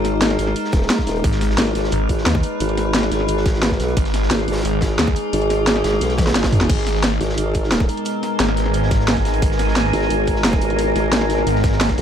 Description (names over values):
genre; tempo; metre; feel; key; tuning
dark technical drum and bass; 176 BPM; 4/4; straight; G# minor; A4 = 439 Hz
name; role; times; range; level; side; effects
metallic inharmonic drone; sustained chords; 0.0-12.0 s; G#3 to B4; -23 LUFS; left 1 dB; chorus, built-in reverb, sidechain pumping
formant-sweep wobble bass; bass; 0.0-7.9, 9.9-12.0 s; D#1 to B1; -21 LUFS; equal; chorus
crunchy breakbeat drum kit; drums; 0.0-12.0 s; hi-hat, snare drum; -32 LUFS; equal; high-pass filter on hats, high-pass filter on snare, high-pass filter on room
drum and bass drum kit; drums; 0.0-12.0 s; crash cymbal, hi-hat, snare drum, toms; -21 LUFS; equal; none
electronic kick drum; drums; 0.7-12.0 s; none; -20 LUFS; equal; none
phased detuned saw bass; bass; 1.2-12.0 s; G#1 to D#2; -20 LUFS; equal; phaser, tube saturation, sidechain pumping
deep dark ambient pad; texture; 7.9-12.0 s; B3 to A#5; -25 LUFS; right 3 dB; chorus, built-in reverb, sidechain pumping
room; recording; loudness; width
light reverb; none; -16 LUFS; side -8 dB against mid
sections
0.0-6.7 A section; 6.7-12.0 A section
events
drop 0.0-6.7, 6.7-12.0; drum fill 6.2-6.7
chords
0.0 G#madd9